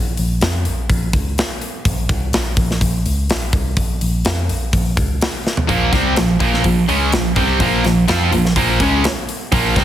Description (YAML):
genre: hard rock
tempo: 125 BPM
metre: 4/4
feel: straight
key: Bb dorian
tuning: A4 = 440 Hz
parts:
  - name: mellow tine electric piano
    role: bass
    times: 0.0-9.8 s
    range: Bb1 to F2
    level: -20 LUFS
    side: equal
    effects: medium stereo tremolo
  - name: tight metal drum kit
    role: drums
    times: 0.2-9.8 s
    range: hi-hat, kick drum, snare drum, toms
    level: -19 LUFS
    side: equal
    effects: none
  - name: distorted electric guitar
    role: riff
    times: 5.7-9.8 s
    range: Bb2 to F4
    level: -19 LUFS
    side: left 9 dB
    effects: distortion
  - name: tight distorted guitar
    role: riff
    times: 5.7-9.8 s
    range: Bb2 to F4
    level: -17 LUFS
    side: right 8 dB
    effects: distortion
room: studio reverb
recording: heavily compressed radio sound, multiband compression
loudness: -14 LUFS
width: side -11 dB against mid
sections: 0.0-9.8 A section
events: drum fill 5.4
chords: 0.0 Bbm